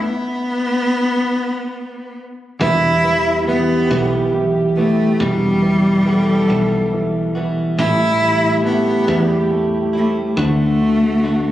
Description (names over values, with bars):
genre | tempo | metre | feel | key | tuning
pop | 46 BPM (dotted quarters) | 6/8 | straight | E minor | A4 = 441 Hz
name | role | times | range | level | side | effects
rich cello | melody | 0.0-11.5 s | G3 to E4 | -17 LUFS | equal | none
warm concert grand piano | accompaniment | 0.0-11.5 s | B2 to E4 | -21 LUFS | equal | none
direct-recorded clean electric guitar | arpeggios | 0.0-11.5 s | E2 to F#4 | -27 LUFS | left 2 dB | none
mellow French horn section | second line | 2.6-11.5 s | F#4 to A4 | -22 LUFS | right 2 dB | none
woody fretless electric bass | bass | 2.6-11.5 s | E1 to E2 | -23 LUFS | equal | lush chorus
room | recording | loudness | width
light reverb, studio reverb | recorded on a phone in the room, club reverb | -14 LUFS | side -13 dB against mid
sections
0.0-2.6 A section; 2.6-11.5 B section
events
stop 0.0-2.6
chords
0.0 N.C.; 2.6 Emadd9; 7.8 Am7; 10.4 D6